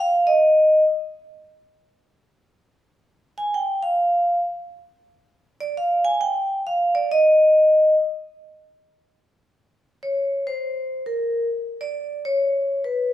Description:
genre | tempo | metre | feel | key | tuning
jazz | 135 BPM | 4/4 | swing 67% on 8ths | Eb major | A4 = 439 Hz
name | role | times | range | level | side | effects
vibraphone with medium hard mallets | solo | 0.0-13.1 s | Bb4 to Ab5 | -18 LUFS | equal | none
room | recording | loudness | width
wet large studio reverb, RT60 1.2 s | band playing live in one room | -18 LUFS | side -12 dB against mid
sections
0.0-9.7 A section; 9.7-13.1 B section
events
vibraphone solo 0.0-9.7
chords
none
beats
0.40 | 0.84 1.29 1.73 2.17 | 2.62 3.06 3.50 3.95 | 4.39 4.83 5.28 5.72 | 6.17 6.61 7.05 7.50 | 7.94 8.38 8.83 9.27 | 9.71 10.16 10.60 11.05 | 11.49 11.94 12.38 12.82

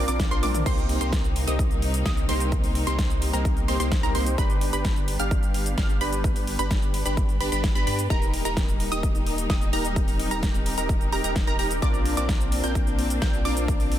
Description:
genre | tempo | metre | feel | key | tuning
EDM, festival progressive house | 129 BPM | 4/4 | straight | C minor | A4 = 443 Hz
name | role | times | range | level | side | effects
warm symphonic string section | sustained chords | 0.0-14.0 s | C3 to Eb4 | -34 LUFS | left 2 dB | sidechain pumping
wide unison pluck | arpeggios | 0.0-14.0 s | Bb5 to G6 | -32 LUFS | right 2 dB | sidechain pumping, tape echo
supersaw stab | riff | 0.0-14.0 s | Bb3 to G5 | -29 LUFS | equal | sidechain pumping, tape echo
saturated sub bass | bass | 0.0-14.0 s | Eb1 to G2 | -28 LUFS | equal | sidechain pumping
big-room dance drum kit | drums | 0.1-14.0 s | crash cymbal, hi-hat, shaker, snare drum, toms | -33 LUFS | equal | none
electronic kick drum | drums | 0.2-13.8 s | none | -24 LUFS | equal | none
room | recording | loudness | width
digital ambience | dense, heavily limited modern master | -22 LUFS | side -12 dB against mid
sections
0.0-14.0 A section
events
drum fill 0.4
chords
0.0 Bbadd9; 0.7 Cm7; 4.4 G; 8.1 Eb; 11.8 Bbadd9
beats
0.20 | 0.66 1.13 1.59 2.06 | 2.52 2.99 3.45 3.92 | 4.38 4.85 5.31 5.78 | 6.24 6.71 7.17 7.64 | 8.10 8.57 9.03 9.50 | 9.96 10.43 10.89 11.36 | 11.82 12.29 12.75 13.22 | 13.68

